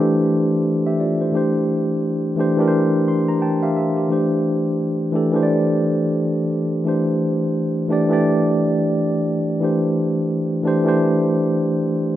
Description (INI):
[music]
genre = R&B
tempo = 87 BPM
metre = 4/4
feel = swing 60% on 16ths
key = unclear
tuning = A4 = 439 Hz
[part]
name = mellow tine electric piano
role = solo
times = 0.0-12.2 s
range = E3 to C6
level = -17 LUFS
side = equal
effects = fast stereo tremolo
[sound]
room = moderate lush hall reverb, RT60 2.4 s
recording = rough home demo mix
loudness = -17 LUFS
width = side -13 dB against mid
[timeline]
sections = 0.0-12.2 A section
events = tine electric piano fill 2.7-4.1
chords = 0.0 D9sus4; 1.3 A7sus4; 4.1 D9sus4